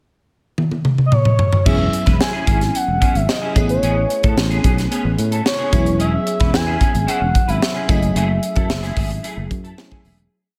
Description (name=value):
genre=polished 1980s jazz-funk pop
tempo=111 BPM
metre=4/4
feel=straight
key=E major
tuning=A4 = 440 Hz
part: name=crisp fusion drum kit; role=drums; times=0.6-10.3 s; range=crash cymbal, hi-hat, kick drum, snare drum, toms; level=-20 LUFS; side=equal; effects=none
part: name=expressive synth lead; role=melody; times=1.1-10.0 s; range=C#5 to G#5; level=-25 LUFS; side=equal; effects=chorus, slapback echo, tape echo
part: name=FM electric piano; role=accompaniment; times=1.7-10.3 s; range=F#3 to G#4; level=-27 LUFS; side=equal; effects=phaser, analog chorus, slapback echo
part: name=clean electric guitar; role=riff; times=1.7-10.2 s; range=A3 to B4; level=-29 LUFS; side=equal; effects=ensemble chorus, slapback echo
part: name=sustaining fretless electric bass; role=bass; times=1.7-10.3 s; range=E1 to A2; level=-22 LUFS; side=equal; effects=none
room=light reverb, studio reverb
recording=none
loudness=-17 LUFS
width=mono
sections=0.0-1.7 pickup bar; 1.7-10.3 verse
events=drum fill 0.6-1.7; fade-out 8.2-10.3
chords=0.0 N.C.; 1.7 E6; 3.6 Amaj9; 5.7 E6; 7.9 F#m9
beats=0.04 0.58 1.12 | 1.66 2.21 2.75 3.29 | 3.83 4.37 4.91 5.46 | 6.00 6.54 7.08 7.62 | 8.16 8.70 9.24 9.78